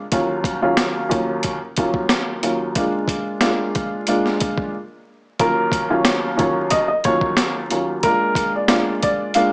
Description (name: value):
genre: hip hop, boom-bap hip-hop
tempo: 91 BPM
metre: 4/4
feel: swing 55% on 16ths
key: Eb minor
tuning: A4 = 440 Hz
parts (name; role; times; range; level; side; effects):
- dark upright piano; accompaniment; 0.0-9.5 s; Eb2 to F4; -20 LUFS; equal; cassette tape, high-pass filter, low-pass filter
- boom bap sampler-style drum kit; drums; 0.1-9.5 s; hi-hat, kick drum, snare drum; -21 LUFS; equal; none
- dark upright piano; melody; 5.4-9.5 s; Bb4 to F5; -19 LUFS; equal; high-pass filter, low-pass filter
room: light reverb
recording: vinyl crackle, small speaker sound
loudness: -17 LUFS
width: side -34 dB against mid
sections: 0.0-5.4 A section; 5.4-9.5 B section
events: break 4.7-5.4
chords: 0.1 Ebm7; 2.8 Bb7; 5.4 Ebm7; 8.0 Bb7